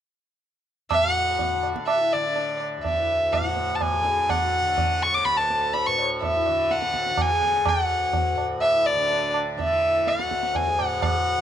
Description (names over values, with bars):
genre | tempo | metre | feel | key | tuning
indian classical, Hindustani | 125 BPM | 7/4 | straight | D raga yaman | A4 = 440 Hz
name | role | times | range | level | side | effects
warm violin | melody | 0.9-11.4 s | D5 to D6 | -22 LUFS | equal | none
tanpura | drone | 0.9-11.4 s | D2 to D3 | -33 LUFS | left 1 dB | none
tabla | percussion | 0.9-11.2 s | none | -29 LUFS | right 4 dB | none
pedal harmonium | second line | 1.0-11.4 s | D4 to C#5 | -33 LUFS | left 12 dB | none
room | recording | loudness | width
moderate echo chamber reverb, RT60 2.5 s | 1960s-style stereo | -20 LUFS | side -10 dB against mid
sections
0.9-11.4 A section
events
none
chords
none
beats
| 0.91 1.39 1.88 2.36 2.84 3.33 3.81 | 4.29 4.77 5.26 5.74 6.22 6.70 7.18 | 7.66 8.14 8.62 9.10 9.58 10.06 10.54 | 11.02